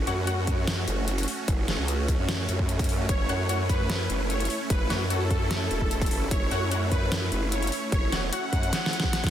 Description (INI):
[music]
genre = heavy wobble dubstep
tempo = 149 BPM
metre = 4/4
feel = half-time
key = F# minor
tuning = A4 = 440 Hz
[part]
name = supersaw chords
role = sustained chords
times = 0.0-9.3 s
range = A3 to F#4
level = -33 LUFS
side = right 2 dB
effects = sidechain pumping
[part]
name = growl bass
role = bass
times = 0.0-8.7 s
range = E1 to F#2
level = -28 LUFS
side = equal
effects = chorus, overdrive
[part]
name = orchestra-hit-like synth stab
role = stabs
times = 0.1-0.4, 3.3-8.4 s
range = F#4 to F#5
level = -34 LUFS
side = left 3 dB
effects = built-in reverb, digital delay
[part]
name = dubstep drum kit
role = drums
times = 0.1-9.3 s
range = hi-hat, snare drum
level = -31 LUFS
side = equal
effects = overdrive
[part]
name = electronic kick drum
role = drums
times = 0.5-9.3 s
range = none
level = -27 LUFS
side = equal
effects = overdrive
[part]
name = soft supersaw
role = melody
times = 3.1-9.3 s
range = A4 to F#5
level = -32 LUFS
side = equal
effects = digital delay
[sound]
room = digital ambience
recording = dense, heavily limited modern master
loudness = -24 LUFS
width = side -10 dB against mid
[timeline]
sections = 0.0-9.3 A section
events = drum fill 8.7-9.3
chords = 0.0 F#m